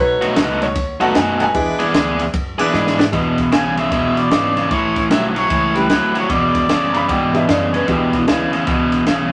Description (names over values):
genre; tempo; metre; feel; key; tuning
electric blues shuffle; 152 BPM; 4/4; swing 63% on 8ths; E mixolydian; A4 = 440 Hz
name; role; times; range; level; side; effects
warm upright piano; second line; 0.0-2.2, 6.9-8.7 s; E4 to B5; -23 LUFS; equal; none
clear saxophone section; stabs; 0.0-3.1 s; D4 to C#5; -25 LUFS; equal; none
upright bass; bass; 0.0-9.3 s; E1 to G#2; -30 LUFS; equal; none
biting overdriven guitar; riff; 0.2-9.3 s; E2 to G#4; -20 LUFS; equal; none
compact cocktail drum kit; drums; 0.2-9.2 s; kick drum, ride cymbal, snare drum; -24 LUFS; equal; none
warm grand piano; accompaniment; 0.4-8.5 s; G3 to B4; -26 LUFS; equal; none
mellow harmonica; melody; 3.5-7.5 s; B4 to G#5; -22 LUFS; equal; overdrive
room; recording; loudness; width
moderate studio reverb, RT60 0.5 s; none; -17 LUFS; mono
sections
0.0-3.1 A section; 3.1-9.3 B section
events
upright piano solo 0.0-3.1; drum fill 2.7-3.1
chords
0.0 B7; 1.6 E7; 4.7 A7; 6.3 E7